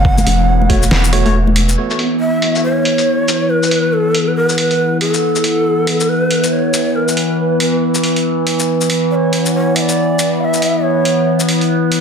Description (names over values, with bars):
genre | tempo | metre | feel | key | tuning
deep dubstep | 139 BPM | 4/4 | swing 60% on 16ths, half-time | unclear | A4 = 436 Hz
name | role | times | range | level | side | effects
breathy bright long shakuhachi | melody | 0.0-11.5 s | A4 to F#5 | -17 LUFS | right 1 dB | dub echo
overtone-sweeping drone | sustained chords | 0.0-12.0 s | E3 to B3 | -16 LUFS | left 1 dB | chorus, built-in reverb
saturated sub bass | bass | 0.0-1.8 s | E1 to F#1 | -14 LUFS | equal | none
electronic kick drum | drums | 0.0-0.8 s | none | -15 LUFS | equal | none
trip hop sampler-style drum kit | drums | 0.2-12.0 s | hi-hat, shaker, snare drum | -19 LUFS | left 1 dB | low-pass filter on hats, low-pass filter on perc, low-pass filter on snare, low-pass filter on room
congas | percussion | 0.2-1.5 s | none | -21 LUFS | left 5 dB | dub echo
tine electric piano | stabs | 0.7-1.3 s | A3 to C#5 | -24 LUFS | right 2 dB | medium stereo tremolo, dub echo
room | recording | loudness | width
moderate spring reverb, RT60 1.1 s | dense, heavily limited modern master | -12 LUFS | side -6 dB against mid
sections
0.0-1.8 A section; 1.8-12.0 B section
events
drop 0.0-1.8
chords
0.0 F#m; 1.8 E5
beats
| 0.05 0.48 0.91 1.34 | 1.77 2.21 2.64 3.07 | 3.50 3.93 4.36 4.80 | 5.23 5.66 6.09 6.52 | 6.95 7.39 7.82 8.25 | 8.68 9.11 9.54 9.97 | 10.41 10.84 11.27 11.70